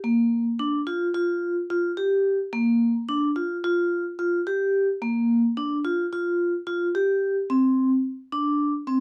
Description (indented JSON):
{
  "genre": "progressive instrumental, progressive",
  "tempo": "217 BPM (eighths)",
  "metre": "9/8",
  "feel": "straight",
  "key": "Bb major",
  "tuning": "A4 = 440 Hz",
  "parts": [
    { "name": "vibraphone with medium mallets", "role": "solo", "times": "0.0-9.0 s", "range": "Bb3 to G4", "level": "-24 LUFS", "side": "equal", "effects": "none" }
  ],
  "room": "light reverb",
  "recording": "none",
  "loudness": "-24 LUFS",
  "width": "mono",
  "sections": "0.0-7.5 A section; 7.5-9.0 B section",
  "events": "none",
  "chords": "none",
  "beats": "| 0.04 0.32 0.59 0.87 1.15 1.42 1.70 1.98 2.25 | 2.53 2.81 3.08 3.36 3.63 3.91 4.19 4.46 4.74 | 5.02 5.29 5.57 5.84 6.12 6.40 6.67 6.95 7.22 | 7.50 7.78 8.05 8.32 8.60 8.88"
}